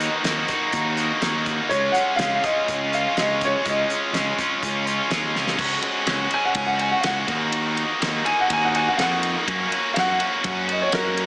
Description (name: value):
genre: indie rock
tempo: 124 BPM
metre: 4/4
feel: straight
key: unclear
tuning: A4 = 440 Hz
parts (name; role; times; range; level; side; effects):
- warm upright piano; melody; 0.0-11.3 s; F#4 to G#5; -24 LUFS; equal; wide subtle chorus
- sludgy distorted guitar; riff; 0.0-11.3 s; D#3 to F#4; -22 LUFS; equal; overdrive
- fuzz fingered electric bass; bass; 0.0-11.3 s; C#2 to F#2; -29 LUFS; equal; overdrive
- loose indie drum kit; drums; 0.0-11.3 s; crash cymbal, hi-hat, kick drum, ride cymbal, snare drum; -29 LUFS; equal; none
room: wet lush hall reverb, RT60 1.9 s, small room ambience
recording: dreamy mix soaked in reverb, small speaker sound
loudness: -19 LUFS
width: side -27 dB against mid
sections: 0.0-5.6 A section; 5.6-11.3 B section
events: drum fill 5.4; upright piano solo 5.6-11.3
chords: 0.0 D#m; 1.7 C#add9; 5.6 C#sus4; 7.3 D#madd9; 9.5 F#